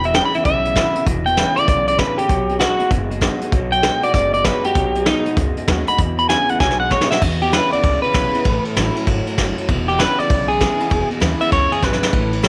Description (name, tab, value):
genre	rockabilly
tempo	195 BPM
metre	4/4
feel	swing 64% on 8ths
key	E major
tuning	A4 = 439 Hz
part	electric guitar at the edge of break-up	melody	0.0-12.5 s	D#4 to B5	-20 LUFS	equal	tape echo
part	picked steel-string acoustic guitar	accompaniment	0.0-12.5 s	E2 to F#4	-30 LUFS	equal	none
part	electric guitar through a small old amp	riff	0.0-12.5 s	E2 to G#3	-27 LUFS	equal	none
part	upright bass	bass	0.0-12.5 s	E1 to E2	-26 LUFS	equal	none
part	vintage brush drum kit	drums	0.0-12.5 s	crash cymbal, hi-hat, kick drum, ride cymbal, snare drum	-22 LUFS	equal	none
room	light reverb, small room ambience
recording	none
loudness	-17 LUFS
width	mono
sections	0.0-7.2 A section; 7.2-12.5 B section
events	drum fill 6.6-7.2, 11.8-12.1; clean electric guitar solo 7.2-12.5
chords	0.0 E; 2.3 B; 6.0 E; 6.6 B; 7.2 E; 8.5 A; 9.7 E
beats	0.15 0.45 0.76 | 1.07 1.37 1.68 1.99 | 2.29 2.60 2.91 3.22 | 3.52 3.83 4.14 4.45 | 4.76 5.07 5.37 5.68 | 5.99 6.30 6.61 6.92 | 7.22 7.53 7.84 8.15 | 8.45 8.76 9.07 9.38 | 9.68 9.99 10.30 10.61 | 10.91 11.22 11.53 11.83 | 12.14 12.45